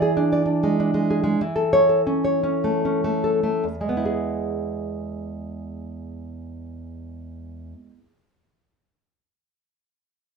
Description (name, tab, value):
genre	romantic piece for solo classical guitar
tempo	68-104 BPM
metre	3/4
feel	rubato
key	E major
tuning	A4 = 440 Hz
part	nylon-string guitar	solo	0.0-8.1 s	E2 to D5	-21 LUFS	equal	none
room	moderate studio ambience, RT60 0.5 s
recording	minimal, uncompressed stereo recording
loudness	-20 LUFS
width	side -5 dB against mid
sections	0.0-3.7 A section; 3.7-8.1 B section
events	slowing down 0.0-3.7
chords	0.0 E7; 1.4 A/E; 3.7 E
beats	0.16 0.77 | 1.40 2.07 2.83 | 3.66 4.42 5.16 | 5.88 6.60 7.35